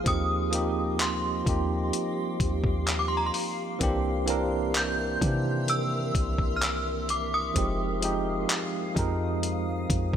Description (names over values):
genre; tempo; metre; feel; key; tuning
contemporary R&B; 64 BPM; 4/4; straight; F dorian; A4 = 440 Hz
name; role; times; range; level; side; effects
synth chime; melody; 0.0-9.2 s; Bb5 to G6; -31 LUFS; equal; ensemble chorus, ping-pong delay
bell-like tine electric piano; accompaniment; 0.0-10.2 s; Eb3 to Bb4; -30 LUFS; right 3 dB; medium stereo tremolo
granular cloud pad; sustained chords; 0.0-10.2 s; Ab3 to Eb6; -35 LUFS; left 2 dB; built-in reverb
clean 808-style bass; bass; 0.0-10.2 s; F1 to C3; -31 LUFS; left 1 dB; none
dusty soul sampler-style drum kit; drums; 0.1-10.2 s; handclaps, hi-hat, kick drum; -29 LUFS; left 1 dB; none
room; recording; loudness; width
light reverb; none; -25 LUFS; side -9 dB against mid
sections
0.0-10.2 A section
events
none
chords
0.1 Eb6; 3.8 C7; 7.6 Fm7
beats
| 0.06 1.00 1.93 2.87 | 3.81 4.75 5.68 6.62 | 7.56 8.50 9.43